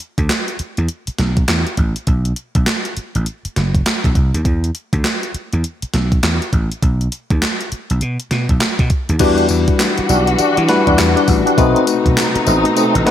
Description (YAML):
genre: R&B, new jack swing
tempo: 101 BPM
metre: 4/4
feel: swing 62% on 16ths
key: E minor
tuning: A4 = 439 Hz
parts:
  - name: gated 80s digital drum machine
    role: drums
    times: 0.0-13.1 s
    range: crash cymbal, handclaps, hi-hat, kick drum, snare drum, tambourine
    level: -18 LUFS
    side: equal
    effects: gated reverb, gated reverb snare
  - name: vintage slap bass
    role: bass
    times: 0.2-13.0 s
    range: F#1 to E3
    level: -17 LUFS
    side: equal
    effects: none
  - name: bell-like tine electric piano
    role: accompaniment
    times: 9.2-13.1 s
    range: G3 to B4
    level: -16 LUFS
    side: moving between left 9 dB and equal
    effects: auto-pan
  - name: muted studio string section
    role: sustained chords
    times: 9.2-13.1 s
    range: B2 to F#4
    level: -20 LUFS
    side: left 2 dB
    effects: none
  - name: tonewheel organ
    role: stabs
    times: 9.2-13.0 s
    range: G3 to F#4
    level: -18 LUFS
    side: equal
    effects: overdrive, chorus vibrato, slow rotary speaker, ping-pong delay
room: digital ambience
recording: none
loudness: -14 LUFS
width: side -10 dB against mid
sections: 0.0-9.2 A section; 9.2-13.1 B section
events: none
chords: 0.0 E5; 2.1 B5; 4.5 E5; 6.8 N.C.; 9.2 Em9; 11.6 B7b9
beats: 0.29 0.89 1.48 | 2.07 2.67 3.26 3.86 | 4.45 5.04 5.64 6.23 | 6.83 7.42 8.02 8.61 | 9.20 9.80 10.39 10.98 | 11.58 12.17 12.77